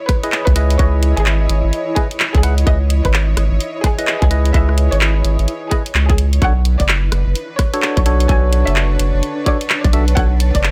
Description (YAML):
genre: UK garage, two-step garage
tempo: 128 BPM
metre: 4/4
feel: swing 63% on 16ths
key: unclear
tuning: A4 = 440 Hz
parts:
  - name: airy breathy pad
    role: sustained chords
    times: 0.0-10.7 s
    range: B4 to C#5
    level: -33 LUFS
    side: equal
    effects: chorus, sidechain pumping
  - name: granular cloud pad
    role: texture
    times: 0.0-10.7 s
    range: D4 to B5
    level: -30 LUFS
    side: equal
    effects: built-in reverb, sidechain pumping
  - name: rich chamber violin section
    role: melody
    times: 0.1-10.7 s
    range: G#4 to G#5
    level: -27 LUFS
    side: equal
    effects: tape echo
  - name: electronic kick drum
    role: drums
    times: 0.1-10.6 s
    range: none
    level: -18 LUFS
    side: equal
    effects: studio reverb
  - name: garage drum kit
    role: drums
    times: 0.1-10.7 s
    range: handclaps, hi-hat, rim click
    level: -22 LUFS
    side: equal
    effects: studio reverb
  - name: percussive organ stab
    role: stabs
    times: 0.2-10.3 s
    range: D4 to F#5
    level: -25 LUFS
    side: equal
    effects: chorus, tape echo
  - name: saturated sub bass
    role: bass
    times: 0.5-10.7 s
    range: F#1 to C#2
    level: -17 LUFS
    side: equal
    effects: sidechain pumping
room: little or no reverb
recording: none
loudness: -15 LUFS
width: mono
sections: 0.0-10.7 A section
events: none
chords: 0.0 C#m9; 6.4 Bm9